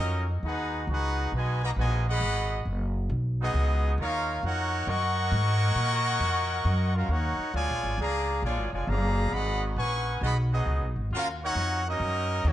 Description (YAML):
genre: jazz, big band swing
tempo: 135 BPM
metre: 4/4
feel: swing 67% on 8ths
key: Eb minor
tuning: A4 = 440 Hz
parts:
  - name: bright trumpet section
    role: melody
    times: 0.0-12.5 s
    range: Bb3 to Db6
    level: -29 LUFS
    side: equal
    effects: none
  - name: muted trombone section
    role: second line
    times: 0.0-12.5 s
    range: Cb3 to Gb4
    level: -35 LUFS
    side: right 2 dB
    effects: none
  - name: upright bass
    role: bass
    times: 0.0-12.5 s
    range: F1 to Bb2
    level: -28 LUFS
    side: equal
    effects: none
room: light reverb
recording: dark, warm production, nothing above 10.3 kHz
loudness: -25 LUFS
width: side -13 dB against mid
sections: 0.0-12.5 A section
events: none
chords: 0.4 Abm7; 4.0 Ebm7; 7.5 Bb7#9; 9.3 Abm7; 11.1 Ebm7